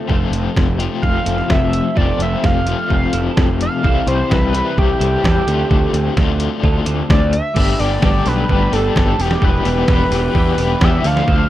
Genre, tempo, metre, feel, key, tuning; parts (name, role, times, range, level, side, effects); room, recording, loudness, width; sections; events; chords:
indie rock; 129 BPM; 4/4; straight; G mixolydian; A4 = 440 Hz
overdriven electric guitar; riff; 0.0-11.5 s; E2 to G4; -21 LUFS; left 8 dB; tremolo
twelve-string electric guitar; riff; 0.0-11.5 s; C3 to B4; -26 LUFS; right 7 dB; ensemble chorus
fuzz picked electric bass; bass; 0.1-11.4 s; E1 to E2; -19 LUFS; right 1 dB; overdrive
trip hop sampler-style drum kit; drums; 0.1-11.4 s; crash cymbal, hi-hat, kick drum, snare drum; -17 LUFS; right 1 dB
overdriven synth lead; melody; 1.0-11.5 s; G4 to F5; -21 LUFS; right 1 dB; distortion, chorus
sweeping resonant pad; sustained chords; 8.1-11.5 s; F4 to D6; -36 LUFS; equal
little or no reverb; rough home demo mix; -13 LUFS; side -13 dB against mid
0.0-7.6 A section; 7.6-11.5 B section
analog synth lead solo 0.0-7.6
0.1 Fmaj7; 3.8 C6; 5.5 Dm7; 7.6 Gadd9; 9.2 Em7